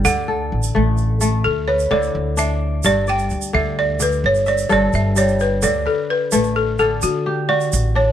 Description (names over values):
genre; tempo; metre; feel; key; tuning
west african traditional, West African string and xylophone music; 86 BPM (dotted quarters); 12/8; straight; D major; A4 = 438 Hz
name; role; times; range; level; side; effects
balafon; melody; 0.0-8.1 s; F#4 to G5; -19 LUFS; equal; none
kora; arpeggios; 0.0-8.1 s; G2 to E5; -22 LUFS; left 3 dB; none
upright bass; bass; 0.1-8.1 s; G1 to D3; -21 LUFS; equal; none
tube shaker; percussion; 0.1-7.8 s; none; -27 LUFS; right 8 dB; none
room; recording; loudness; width
moderate spring reverb, RT60 1.7 s; none; -16 LUFS; side -10 dB against mid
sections
0.0-5.6 A section; 5.6-8.1 B section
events
balafon solo 0.0-5.6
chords
0.1 D; 2.8 G5; 5.6 D